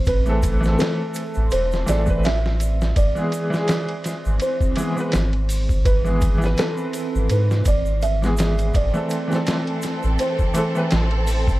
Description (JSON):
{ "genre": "trip hop", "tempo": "83 BPM", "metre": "4/4", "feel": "swing 56% on 16ths", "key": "A harmonic minor", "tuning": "A4 = 440 Hz", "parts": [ { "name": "felt-muted upright piano", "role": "melody", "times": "0.0-11.6 s", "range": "A4 to E5", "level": "-27 LUFS", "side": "right 2 dB", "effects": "tape echo" }, { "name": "soft dub sub bass", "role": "bass", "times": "0.0-11.6 s", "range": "E1 to G#2", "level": "-20 LUFS", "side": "equal", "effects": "none" }, { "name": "backwards swelling texture", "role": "texture", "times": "0.0-11.6 s", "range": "E3 to C4", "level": "-33 LUFS", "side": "right 1 dB", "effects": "built-in reverb" }, { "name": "trip hop sampler-style drum kit", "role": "drums", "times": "0.1-11.6 s", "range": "hi-hat, kick drum, ride cymbal, snare drum", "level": "-23 LUFS", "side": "equal", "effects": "small room ambience" }, { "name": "egg shaker", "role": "percussion", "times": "0.1-11.6 s", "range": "none", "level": "-40 LUFS", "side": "right 1 dB", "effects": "none" }, { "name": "clear upright piano", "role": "accompaniment", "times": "0.3-10.9 s", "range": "E3 to B4", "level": "-25 LUFS", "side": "equal", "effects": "tremolo" }, { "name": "rich studio string section", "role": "sustained chords", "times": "8.8-11.6 s", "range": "E3 to A4", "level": "-28 LUFS", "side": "equal", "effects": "vintage 12-bit sampler grit" } ], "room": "studio ambience", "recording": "dark, warm production", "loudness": "-18 LUFS", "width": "side -17 dB against mid", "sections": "0.0-11.6 A section", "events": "none", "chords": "0.0 Am; 3.0 E/G#; 8.7 Am" }